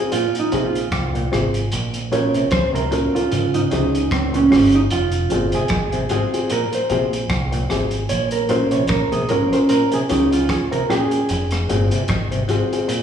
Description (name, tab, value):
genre	roots reggae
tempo	75 BPM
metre	4/4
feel	swing 57% on 16ths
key	F minor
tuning	A4 = 439 Hz
part	mellow electric guitar	accompaniment	0.0-12.1 s	C4 to Db5	-20 LUFS	right 4 dB	tape echo, slapback echo
part	dark upright piano	stabs	0.0-12.9 s	C4 to Bb4	-21 LUFS	left 2 dB	slapback echo
part	auto-wah clav	arpeggios	0.1-13.0 s	Ab2 to Eb3	-25 LUFS	left 3 dB	overdrive, slapback echo
part	crunchy breakbeat drum kit	drums	0.1-13.0 s	hi-hat, kick drum, rim click	-26 LUFS	right 1 dB	slapback echo
part	deep dub fingered electric bass	bass	0.5-12.4 s	F1 to Db3	-23 LUFS	equal	none
room	moderate club reverb, RT60 0.7 s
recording	live gig heard through the venue's PA, recital hall reverb, small room ambience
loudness	-16 LUFS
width	side -8 dB against mid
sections	0.0-13.0 A section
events	clean electric guitar solo 0.0-13.0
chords	0.0 Fm; 1.7 Bbm; 3.3 Db; 4.9 Fm; 8.1 Bbm; 9.7 Db; 11.3 Fm